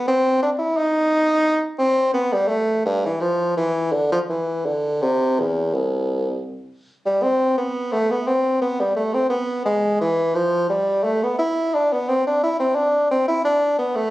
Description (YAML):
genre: classical, baroque-style fantasia for unaccompanied bassoon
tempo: 80-89 BPM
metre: 3/4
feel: rubato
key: C major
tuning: A4 = 439 Hz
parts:
  - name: clear bassoon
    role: solo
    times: 0.0-14.1 s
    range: C2 to E4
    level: -18 LUFS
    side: equal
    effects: none
room: moderate studio reverb, RT60 0.7 s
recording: recorded on a phone in the room, club reverb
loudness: -18 LUFS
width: side -16 dB against mid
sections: 0.0-7.2 A section; 7.2-14.1 A section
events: none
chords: none